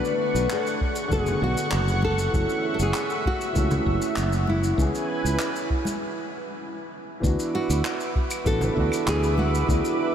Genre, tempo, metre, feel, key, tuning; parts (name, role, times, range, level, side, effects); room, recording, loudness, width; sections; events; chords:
sunset chillout; 98 BPM; 4/4; straight; A4 = 440 Hz
nylon-string guitar; melody; 0.0-10.1 s; E4 to B4; -28 LUFS; left 1 dB; tape echo
dark grand piano; accompaniment; 0.0-10.1 s; D3 to G#4; -29 LUFS; moving between left 2 dB and right 4 dB; auto-pan, ping-pong delay
lush unison pad; sustained chords; 0.0-10.1 s; A3 to D6; -31 LUFS; equal; chorus, vintage 12-bit sampler grit
shaker, handclaps and claves; drums; 0.0-10.0 s; -34 LUFS; equal
sustaining fretless electric bass; bass; 0.3-9.8 s; F#1 to D2; -25 LUFS; equal
electronic kick drum; drums; 0.8-9.8 s; -26 LUFS; equal
congas; percussion; 1.3-9.5 s; -36 LUFS; left 1 dB
wet huge ambient reverb, RT60 8.1 s; dreamy mix soaked in reverb; -22 LUFS; side -9 dB against mid
0.0-7.2 A section; 7.2-10.1 B section
break 6.0-7.2
0.0 Bm7; 2.0 F#m7; 4.8 C#m7; 7.2 D69